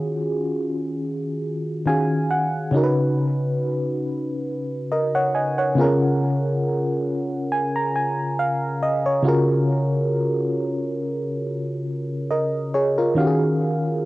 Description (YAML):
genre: R&B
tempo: 69 BPM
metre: 4/4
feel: swing 54% on 16ths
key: Eb minor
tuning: A4 = 440 Hz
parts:
  - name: FM electric piano with auto-pan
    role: solo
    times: 0.0-14.1 s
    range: Db3 to Bb5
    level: -20 LUFS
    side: equal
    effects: cassette tape, analog delay
room: moderate booth ambience, RT60 0.1 s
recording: home recording on cassette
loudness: -20 LUFS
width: side -18 dB against mid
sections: 0.0-14.1 A section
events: FM electric piano fill 1.4-2.7, 7.1-9.7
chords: 0.0 Ebm11; 2.7 Db9sus4; 5.8 Bbm7/Db; 13.2 Ebm11